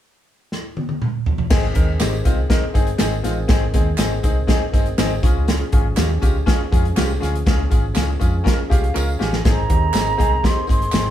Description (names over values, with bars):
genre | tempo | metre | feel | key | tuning
uptempo 1960s-style soul | 121 BPM | 4/4 | straight | Ab major | A4 = 444 Hz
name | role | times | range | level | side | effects
natural country drum kit | drums | 0.5-11.1 s | crash cymbal, hi-hat, kick drum, snare drum, toms | -18 LUFS | equal | none
bright upright piano | accompaniment | 1.5-11.1 s | Ab3 to Bb4 | -24 LUFS | left 2 dB | none
overdriven tonewheel organ | sustained chords | 1.5-11.1 s | Eb3 to Ab4 | -30 LUFS | right 1 dB | chorus vibrato, slow rotary speaker
vintage muted fingered electric bass | bass | 1.5-11.1 s | G1 to F2 | -22 LUFS | equal | none
tambourine and handclaps | percussion | 1.5-11.0 s | none | -34 LUFS | right 3 dB | none
hollow silver concert flute | melody | 8.7-11.1 s | F5 to C6 | -23 LUFS | right 4 dB | none
room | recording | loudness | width
light reverb | band playing live in one room | -16 LUFS | side -11 dB against mid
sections
0.0-1.5 A section; 1.5-9.4 B section; 9.4-11.1 C section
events
drum fill 0.5-1.5, 9.0-9.4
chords
0.0 N.C.; 1.5 Ab; 5.2 Db; 9.4 Ab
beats
0.02 0.51 1.01 | 1.51 2.00 2.50 3.00 | 3.49 3.99 4.49 4.98 | 5.48 5.97 6.47 6.97 | 7.46 7.96 8.46 8.95 | 9.45 9.94 10.44 10.94